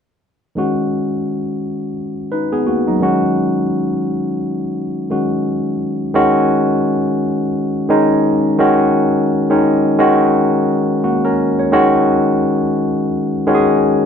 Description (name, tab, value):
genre	R&B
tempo	86 BPM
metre	4/4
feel	swing 61% on 16ths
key	unclear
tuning	A4 = 441 Hz
part	barky tine electric piano	solo	0.6-14.1 s	D#3 to C#5	-13 LUFS	left 1 dB	overdrive
room	moderate small room reverb, RT60 0.5 s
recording	band playing live in one room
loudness	-14 LUFS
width	side -7 dB against mid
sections	0.6-6.1 A section; 6.1-14.1 B section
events	none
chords	0.6 D#m7